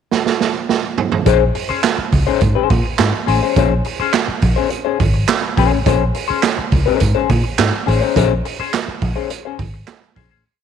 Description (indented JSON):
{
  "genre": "funk",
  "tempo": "104 BPM",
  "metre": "4/4",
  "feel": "straight",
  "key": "Bb minor",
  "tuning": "A4 = 441 Hz",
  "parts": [
    { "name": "raw garage drum kit", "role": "drums", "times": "0.1-10.3 s", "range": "handclaps, hi-hat, kick drum, snare drum, toms", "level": "-18 LUFS", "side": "right 5 dB", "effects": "none" },
    { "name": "clean electric guitar", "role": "accompaniment", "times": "1.3-10.4 s", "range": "Db4 to C5", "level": "-19 LUFS", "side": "left 12 dB", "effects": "wah, wide subtle chorus" },
    { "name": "vintage muted fingered electric bass", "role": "bass", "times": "1.3-10.4 s", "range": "Ab1 to Bb2", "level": "-18 LUFS", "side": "equal", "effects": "none" }
  ],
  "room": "light reverb",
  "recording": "1960s-style stereo",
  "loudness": "-14 LUFS",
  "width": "side -8 dB against mid",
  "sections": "0.0-1.3 pickup bar; 1.3-10.5 groove",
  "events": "drum fill 0.1-1.3; fade-out 8.2-10.5",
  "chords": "0.0 N.C.; 1.3 Bbm9"
}